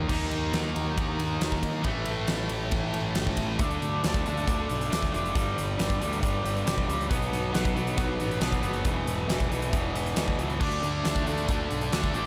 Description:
quiet-loud alternative rock; 137 BPM; 4/4; straight; A4 = 440 Hz
overdriven electric guitar; riff; 0.0-12.3 s; E2 to D#4; -33 LUFS; equal
tight distorted guitar; riff; 0.0-3.6, 10.6-12.3 s; A2 to D#4; -37 LUFS; equal; distortion
fuzz picked electric bass; bass; 0.0-12.3 s; E1 to D#3; -34 LUFS; equal; overdrive
warm symphonic string section; sustained chords; 0.1-12.3 s; D4 to B5; -42 LUFS; equal
huge arena drum kit; drums; 0.1-12.2 s; crash cymbal, hi-hat, kick drum, ride cymbal, snare drum; -32 LUFS; equal
light reverb; -28 LUFS; mono
0.1-3.6 A section; 3.6-12.3 B section
0.1 D#m; 1.8 A7; 3.6 Dm; 5.3 G; 7.1 B; 8.8 E; 10.6 Dm

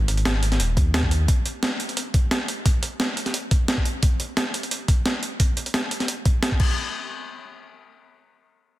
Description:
liquid drum and bass; 175 BPM; 4/4; swing 54% on 16ths; A4 = 440 Hz
smooth gliding synth bass; bass; 0.0-1.3 s; Eb1 to Eb2; -21 LUFS; equal
breakbeat sampler-style drum kit; drums; 0.1-6.7 s; crash cymbal, hi-hat, snare drum; -25 LUFS; equal
electronic kick drum; drums; 0.8-6.7 s; -20 LUFS; equal
light reverb, small room ambience; dense, heavily limited modern master; -20 LUFS; side -16 dB against mid
0.0-6.8 A section; 6.8-8.8 B section

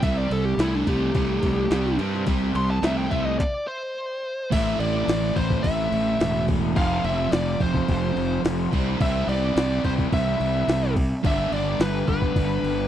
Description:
classic rock; 107 BPM; 4/4; straight; A4 = 440 Hz
bluesy overdriven lead guitar; melody; 0.0-12.9 s; D4 to C6; -27 LUFS; equal; distortion, tape echo
biting overdriven guitar; riff; 0.0-12.9 s; F2 to G4; -30 LUFS; left 12 dB
sludgy distorted guitar; riff; 0.0-12.9 s; F2 to C4; -28 LUFS; right 11 dB; overdrive
fuzz fingered electric bass; bass; 0.0-12.9 s; E1 to G2; -26 LUFS; equal; overdrive
jungle sampler-style drum kit; drums; 0.0-12.8 s; crash cymbal, handclaps, kick drum, ride cymbal, snare drum; -24 LUFS; equal; overdrive
little or no reverb; dry, close 1970s-style studio recording; -21 LUFS; side -11 dB against mid
0.0-4.5 A section; 4.5-12.9 B section
lead electric guitar solo 0.0-4.5; stop 3.4-4.5
0.0 C5; 4.5 Am; 6.8 F; 8.7 C; 11.2 G

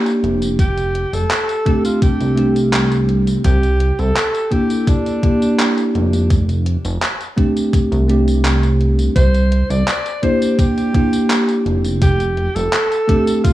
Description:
vaporwave; 84 BPM; 4/4; straight; F major; A4 = 440 Hz
breathy alto saxophone; melody; 0.0-13.5 s; D4 to D5; -22 LUFS; right 1 dB; vintage 12-bit sampler grit, tape echo
bell-like tine electric piano; accompaniment; 0.0-13.5 s; A3 to G4; -17 LUFS; equal; analog chorus, analog delay
gated 80s digital drum machine; drums; 0.1-13.5 s; handclaps, hi-hat, tambourine; -23 LUFS; equal; gated reverb, overdrive
chorused synth bass; bass; 0.2-12.7 s; F1 to C2; -16 LUFS; equal; tube saturation
electronic kick drum; drums; 0.6-13.5 s; -16 LUFS; equal; overdrive
little or no reverb; rough home demo mix, cassette tape, small room reverb; -14 LUFS; side -15 dB against mid
0.0-13.5 A section
0.0 C9 (rootless); 0.6 F69; 3.4 C9; 6.3 F69; 9.2 C9; 12.0 F69

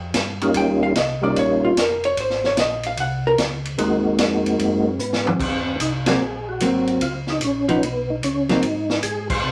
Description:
soul jazz organ trio; 149 BPM; 4/4; swing 66% on 8ths; Ab mixolydian; A4 = 441 Hz
mellow tonewheel organ; bass; 0.0-9.5 s; F1 to C3; -32 LUFS; equal; chorus vibrato, slow rotary speaker
swinging big-band drum kit; drums; 0.1-9.4 s; crash cymbal, hi-hat, kick drum, ride cymbal, snare drum, toms; -27 LUFS; equal
percussive tonewheel organ; melody; 0.4-9.5 s; G3 to C5; -24 LUFS; equal; chorus vibrato, fast rotary speaker
vintage hollow-body jazz guitar; accompaniment; 0.6-3.3, 6.1-8.6 s; F3 to G5; -23 LUFS; equal
wet studio reverb, RT60 0.5 s; -21 LUFS; mono
0.0-5.4 A section; 5.4-9.5 B section
hollow-body jazz guitar solo 0.0-5.4; drum fill 5.0-5.4; band accent 6.0, 9.2
0.0 Eb9; 2.2 Ab9; 7.0 Db7sus2; 8.6 Ab

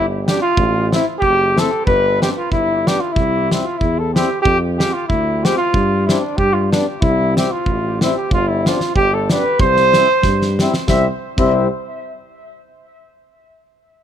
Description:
alpine folk, alpine dance band; 93 BPM; 2/4; swing 55% on 8ths; C major; A4 = 438 Hz
warm flugelhorn; melody; 0.0-11.7 s; D4 to E5; -17 LUFS; equal; tape echo
warm tuba; bass; 0.0-11.7 s; F#1 to G2; -21 LUFS; equal
mellow accordion; accompaniment; 0.3-11.7 s; G3 to F4; -23 LUFS; left 4 dB
loose indie drum kit; drums; 0.3-11.5 s; crash cymbal, hi-hat, kick drum, snare drum; -19 LUFS; equal
little or no reverb; close, detailed microphones; -14 LUFS; side -9 dB against mid
0.0-8.3 A section; 8.3-10.9 B section; 10.9-12.2 C section
drum fill 10.2-10.9
0.0 G; 0.6 Am; 1.9 Gsus4; 2.5 G; 3.2 C; 4.5 Fm; 5.7 G7sus4; 6.4 G; 7.0 C; 8.3 G7sus4; 9.0 G; 9.6 C

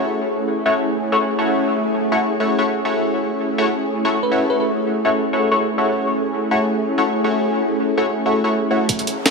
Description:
drum and bass, jungle; 164 BPM; 4/4; swing 55% on 16ths; F# minor; A4 = 436 Hz
soft string machine; sustained chords; 0.0-9.3 s; A3 to G#4; -20 LUFS; equal; ensemble chorus
band-passed chord stab; stabs; 0.0-9.1 s; A3 to C#5; -20 LUFS; left 2 dB; chorus, phaser, vintage 12-bit sampler grit, dub echo
bell-like FM electric piano; melody; 4.2-4.7 s; B4; -29 LUFS; equal
breakbeat sampler-style drum kit; drums; 8.9-9.3 s; hi-hat, kick drum, snare drum; -17 LUFS; right 1 dB; high-pass filter on snare, small room ambience, high-pass filter on hats, high-pass filter on kick
riser; sound effects; 9.0-9.3 s; -32 LUFS; left 3 dB
moderate echo chamber reverb, RT60 2.3 s; -17 LUFS; side -3 dB against mid
0.0-8.9 A section
riser 9.0
0.0 F#m7

